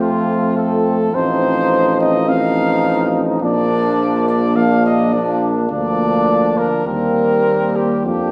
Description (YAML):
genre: classical, brass quintet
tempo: 105 BPM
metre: 4/4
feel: rubato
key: Bb major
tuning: A4 = 440 Hz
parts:
  - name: warm trumpet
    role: melody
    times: 0.0-8.3 s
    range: F4 to F5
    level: -22 LUFS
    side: equal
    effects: none
  - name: warm flugelhorn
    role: second line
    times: 0.0-8.3 s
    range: C4 to Eb4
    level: -24 LUFS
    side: equal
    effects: none
  - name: brilliant trombone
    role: accompaniment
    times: 0.0-8.3 s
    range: F3 to G3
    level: -25 LUFS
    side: equal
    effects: none
  - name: mellow French horn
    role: accompaniment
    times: 0.0-8.3 s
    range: A3 to C4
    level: -23 LUFS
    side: equal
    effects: none
  - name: clear tuba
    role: bass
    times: 0.0-8.3 s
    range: A1 to F2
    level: -22 LUFS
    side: equal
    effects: none
room: wet recital hall reverb, RT60 1.4 s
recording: recorded in a church or concert hall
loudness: -16 LUFS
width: mono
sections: 0.0-8.3 A section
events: none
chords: 0.0 F; 1.1 F7/A; 3.4 Bb; 5.7 Bb/D; 6.9 Cm7/Eb